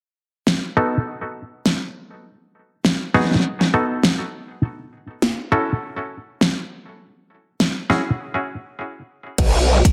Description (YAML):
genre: glitch hop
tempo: 101 BPM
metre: 4/4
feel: swing 57% on 16ths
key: F# dorian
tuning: A4 = 441 Hz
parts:
  - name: pop drum kit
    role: drums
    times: 0.5-9.9 s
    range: crash cymbal, hi-hat, snare drum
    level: -21 LUFS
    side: equal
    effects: overdrive
  - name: muted clav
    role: stabs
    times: 0.8-8.1 s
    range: B3 to A4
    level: -23 LUFS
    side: equal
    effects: sidechain pumping, low-pass filter, digital delay
  - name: growl bass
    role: bass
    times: 9.4-9.8 s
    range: B1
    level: -17 LUFS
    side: equal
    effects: distortion, chorus, tube saturation
  - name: electronic kick drum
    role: drums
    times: 9.4-9.9 s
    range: none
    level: -18 LUFS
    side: equal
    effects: overdrive
room: moderate plate reverb, RT60 1.3 s, digital ambience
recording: dense, heavily limited modern master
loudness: -21 LUFS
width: mono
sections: 0.0-9.4 A section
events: filter sweep on clav 0.0-9.4; break 8.2-9.4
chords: 0.0 B7; 4.6 F#m7; 9.4 N.C.